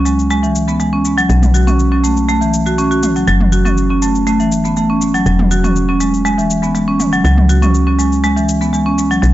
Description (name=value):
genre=afro house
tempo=121 BPM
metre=4/4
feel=straight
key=unclear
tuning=A4 = 440 Hz
part: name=marimba with medium hard mallets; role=arpeggios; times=0.0-9.3 s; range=E3 to F#4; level=-13 LUFS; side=equal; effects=low-pass filter, tape echo
part: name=woody FM bass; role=bass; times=0.0-9.3 s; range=E1 to C#2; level=-16 LUFS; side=equal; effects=none
part: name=electronic cabasa and toms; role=drums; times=0.1-9.3 s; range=none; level=-23 LUFS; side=equal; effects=overdrive
room=light reverb, digital ambience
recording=dry, gritty hardware recording, transformer saturation, nothing above 7.8 kHz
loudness=-11 LUFS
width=side -14 dB against mid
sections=0.0-9.3 A section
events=none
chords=0.0 C#5; 1.3 B5; 3.3 F#m; 5.3 E; 7.2 C#5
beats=0.30 0.80 | 1.29 1.79 2.29 2.78 | 3.28 3.77 4.27 4.77 | 5.26 5.76 6.25 6.75 | 7.25 7.74 8.24 8.73 | 9.23